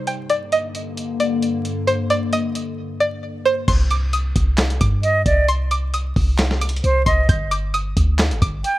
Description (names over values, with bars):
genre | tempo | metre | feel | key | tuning
hip hop, trap | 133 BPM | 4/4 | half-time | C minor | A4 = 443 Hz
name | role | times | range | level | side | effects
warbly tape-like pad | sustained chords | 0.0-3.6 s | G2 to Bb3 | -24 LUFS | left 3 dB | chorus, built-in reverb, phaser, low-pass filter
string-like resonator pluck | melody | 0.1-8.8 s | C5 to G6 | -20 LUFS | right 1 dB | chorus, low-pass filter, digital delay
dusty soul sampler-style drum kit | drums | 0.1-8.8 s | crash cymbal, handclaps, hi-hat, kick drum, snare drum | -21 LUFS | equal | none
warm 808-style bass | bass | 3.7-8.6 s | G1 to G2 | -19 LUFS | equal | none
jazz flute | second line | 5.0-8.8 s | C5 to G5 | -20 LUFS | right 2 dB | digital delay
room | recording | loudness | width
digital ambience | rough home demo mix, vinyl crackle | -17 LUFS | side -16 dB against mid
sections
0.0-3.7 A section; 3.7-8.8 B section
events
none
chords
0.1 Gm; 3.7 Cm; 7.3 G5